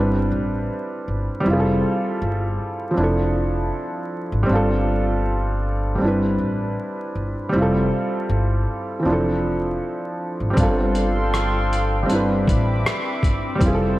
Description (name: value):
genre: lo-fi hip hop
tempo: 79 BPM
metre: 4/4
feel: swing 55% on 16ths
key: unclear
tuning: A4 = 440 Hz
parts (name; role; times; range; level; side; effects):
- felt-muted upright piano; accompaniment; 0.0-14.0 s; E3 to B4; -21 LUFS; right 1 dB; cassette tape
- upright bass; bass; 0.0-14.0 s; F1 to A1; -23 LUFS; equal; none
- warbly tape-like pad; sustained chords; 10.9-14.0 s; C4 to E6; -26 LUFS; left 1 dB; chorus, built-in reverb
- dusty soul sampler-style drum kit; drums; 10.6-13.8 s; hi-hat, kick drum, rim click; -22 LUFS; equal; vintage 12-bit sampler grit
room: moderate lush hall reverb, RT60 2.6 s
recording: dreamy mix soaked in reverb, vinyl crackle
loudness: -19 LUFS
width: side -17 dB against mid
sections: 0.0-14.0 A section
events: none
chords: 0.0 Cmaj9/G; 1.5 Fmaj7; 3.0 Dm9/F; 4.5 G9sus4; 6.0 Cmaj9/G; 7.5 Fmaj7; 9.0 Dm9/F; 10.6 G9sus4; 12.1 Cmaj9/G